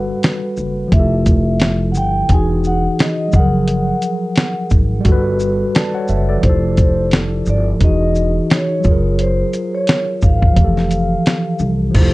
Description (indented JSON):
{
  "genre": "lo-fi hip hop",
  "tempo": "87 BPM",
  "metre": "4/4",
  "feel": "swing 57% on 16ths",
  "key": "unclear",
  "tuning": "A4 = 441 Hz",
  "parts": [
    { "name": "vibraphone with soft mallets", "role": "melody", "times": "0.0-12.1 s", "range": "C5 to G#5", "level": "-22 LUFS", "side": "left 1 dB", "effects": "low-pass filter, tape echo" },
    { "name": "tine electric piano", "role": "accompaniment", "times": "0.0-12.1 s", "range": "E3 to A5", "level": "-19 LUFS", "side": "equal", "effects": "medium stereo tremolo, cassette tape, low-pass filter" },
    { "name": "upright bass", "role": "bass", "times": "0.0-12.1 s", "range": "E1 to C2", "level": "-18 LUFS", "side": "equal", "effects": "none" },
    { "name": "dusty soul sampler-style drum kit", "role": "drums", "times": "0.2-12.1 s", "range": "crash cymbal, hi-hat, kick drum, shaker, snare drum", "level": "-14 LUFS", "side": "equal", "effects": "none" }
  ],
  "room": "light reverb",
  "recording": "dark, warm production, nothing above 10.3 kHz",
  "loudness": "-13 LUFS",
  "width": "side -20 dB against mid",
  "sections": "0.0-12.0 A section",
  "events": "tine electric piano fill 5.4-6.4; hi-hats muted 12.0",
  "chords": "0.0 Gmaj9; 0.9 Fmaj9; 2.3 Emaj9; 3.3 Gbmaj9; 5.1 Gmaj9; 6.4 Fmaj9; 7.8 Emaj9; 8.8 Gbmaj9; 10.6 Fmaj9"
}